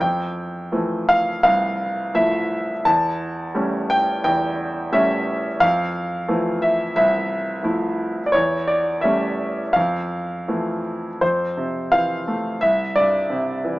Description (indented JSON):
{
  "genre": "classical, lyrical solo piano",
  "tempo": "86 BPM",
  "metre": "4/4",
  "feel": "uneven beats, rubato",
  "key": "F major",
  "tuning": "A4 = 440 Hz",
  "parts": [
    { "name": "clear concert grand piano", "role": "solo", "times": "0.0-13.8 s", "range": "C2 to A5", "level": "-18 LUFS", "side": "equal", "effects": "none" }
  ],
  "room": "light reverb",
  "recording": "small speaker sound",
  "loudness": "-18 LUFS",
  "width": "side -18 dB against mid",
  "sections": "0.0-11.2 A section; 11.2-13.8 B section",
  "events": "none",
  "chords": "0.0 Fmaj7; 2.9 A7/E; 5.6 Fmaj7; 8.3 A7/E; 9.7 Fmaj7; 12.6 C",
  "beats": "| 0.01 0.73 1.44 2.15 | 2.86 3.56 4.25 4.93 | 5.62 6.30 6.97 7.65 | 8.34 9.04 9.75 10.48 | 11.21 11.92 12.62 13.30"
}